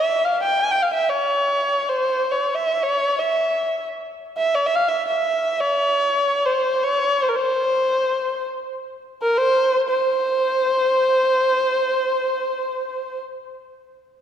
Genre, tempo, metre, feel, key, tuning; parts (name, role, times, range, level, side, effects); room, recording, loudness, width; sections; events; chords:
Persian modal ensemble; free time; C dastgah homayun; A4 = 439 Hz
dark kamancheh; solo; 0.0-13.2 s; Bb4 to Ab5; -18 LUFS; equal
wet concert hall reverb, RT60 2.5 s; -18 LUFS; side -9 dB against mid
0.0-9.9 A section; 9.9-12.5 B section